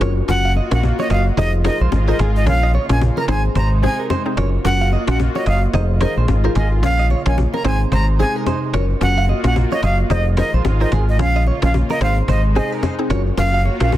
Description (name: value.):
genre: afrobeats.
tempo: 110 BPM.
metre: 4/4.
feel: swing 58% on 16ths.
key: unclear.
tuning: A4 = 440 Hz.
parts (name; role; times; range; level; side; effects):
mallet-like synth pluck; accompaniment; 0.0-14.0 s; C4 to Db5; -25 LUFS; left 1 dB; chorus, phaser.
warm analog pad; sustained chords; 0.0-14.0 s; C3 to Gb4; -27 LUFS; left 1 dB; chorus.
direct-recorded clean electric guitar; riff; 0.0-13.8 s; Ab4 to F5; -27 LUFS; right 7 dB; spring reverb, digital delay.
fingered electric bass; bass; 0.0-14.0 s; F1 to Bb1; -16 LUFS; equal; none.
cajon; drums; 0.0-14.0 s; none; -26 LUFS; equal; none.
congas and bongos; percussion; 0.0-14.0 s; none; -27 LUFS; left 6 dB; none.
breathy bright jazz flute; melody; 0.3-13.9 s; Eb5 to Bb5; -23 LUFS; right 1 dB; digital delay.
room: little or no reverb.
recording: dense, heavily limited modern master.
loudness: -15 LUFS.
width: side -13 dB against mid.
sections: 0.0-14.0 A section.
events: none.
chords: 0.0 Gbmaj7; 1.4 Fm7; 2.5 Bbm; 3.3 Ab; 4.4 Gbmaj7; 5.7 Fm7; 6.8 Bbm; 7.6 Ab; 8.7 Gbmaj7; 10.1 Fm7; 11.2 Bbm; 12.0 Ab; 13.1 Gbmaj7.